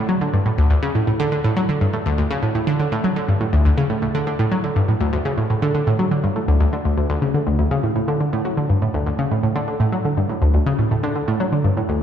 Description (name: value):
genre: ambient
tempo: 122 BPM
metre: 4/4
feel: straight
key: D major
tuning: A4 = 440 Hz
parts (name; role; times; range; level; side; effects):
- analog pluck; solo; 0.0-12.0 s; D2 to F#3; -17 LUFS; equal; chorus, analog delay
room: wet concert hall reverb, RT60 2.1 s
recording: dark, warm production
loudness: -17 LUFS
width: side -9 dB against mid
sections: 0.0-12.0 A section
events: none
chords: none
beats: 0.09 0.58 1.07 | 1.56 2.06 2.55 3.04 | 3.53 4.02 4.52 5.01 | 5.50 5.99 6.48 6.97 | 7.47 7.96 8.45 8.94 | 9.43 9.93 10.42 10.91 | 11.40 11.89